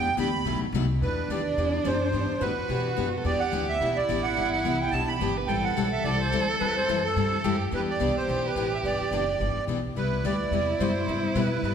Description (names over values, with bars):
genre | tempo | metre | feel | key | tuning
acoustic string swing (jazz manouche) | 215 BPM | 4/4 | swing 58% on 8ths | E minor | A4 = 441 Hz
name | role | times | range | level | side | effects
accordion | melody | 0.0-11.7 s | A4 to B5 | -28 LUFS | right 3 dB | light tremolo tuning
picked steel-string acoustic guitar | accompaniment | 0.0-11.7 s | B2 to A4 | -30 LUFS | left 4 dB | none
upright bass | bass | 0.0-11.7 s | F#1 to B2 | -31 LUFS | equal | none
dark violin | second line | 1.0-11.7 s | D4 to B4 | -31 LUFS | right 2 dB | none
room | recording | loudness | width
wet concert hall reverb, RT60 2.3 s | recorded in a church or concert hall | -24 LUFS | side -8 dB against mid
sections
0.0-1.0 A section; 1.0-11.7 B section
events
accordion solo 0.0-1.0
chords
0.5 B7b9; 1.0 Em7; 5.5 Am7; 7.7 Em7; 10.0 Cmaj7